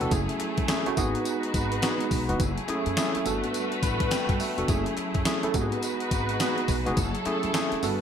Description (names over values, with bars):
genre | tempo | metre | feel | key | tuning
R&B, new jack swing | 105 BPM | 4/4 | swing 62% on 16ths | F# dorian | A4 = 440 Hz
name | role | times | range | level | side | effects
tine electric piano | accompaniment | 0.0-8.0 s | A3 to B5 | -28 LUFS | right 2 dB | medium stereo tremolo
muted studio string section | sustained chords | 0.0-8.0 s | F#3 to B4 | -31 LUFS | left 1 dB | none
upright bass | bass | 0.0-8.0 s | E1 to G2 | -32 LUFS | left 1 dB | none
gated 80s digital drum machine | drums | 0.0-8.0 s | hi-hat, kick drum, snare drum, tambourine | -29 LUFS | equal | gated reverb, gated reverb snare, overdrive
group handclap | percussion | 0.4-7.7 s | none | -42 LUFS | left 8 dB | none
room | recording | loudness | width
moderate plate reverb, RT60 1.5 s, small room ambience | bright 1980s-style digital production | -24 LUFS | side -8 dB against mid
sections
0.0-8.0 A section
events
tine electric piano fill 3.5-4.7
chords
0.1 F#m9; 1.0 G#m7; 2.4 F#m9; 3.3 Gmaj9; 4.7 F#m9; 5.5 G#m7; 7.0 F#m9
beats
| 0.11 0.69 1.26 1.83 | 2.40 2.97 3.54 4.11 | 4.68 5.26 5.83 6.40 | 6.97 7.54